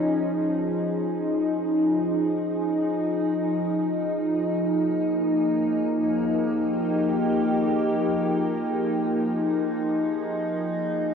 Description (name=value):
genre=ambient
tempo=free time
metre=none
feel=none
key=F minor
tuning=A4 = 440 Hz
part: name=evolving wavetable pad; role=solo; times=0.0-11.1 s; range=F3 to Ab4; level=-22 LUFS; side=equal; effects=chorus, built-in reverb, diffuse ambient delay
room=wet lush hall reverb, RT60 3.2 s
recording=worn, warbling old tape, cassette tape, warbly pitch drift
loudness=-22 LUFS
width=side -6 dB against mid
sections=0.0-3.4 A section; 3.4-11.1 B section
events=none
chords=0.0 Dbadd9/F; 3.4 Fm11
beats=free time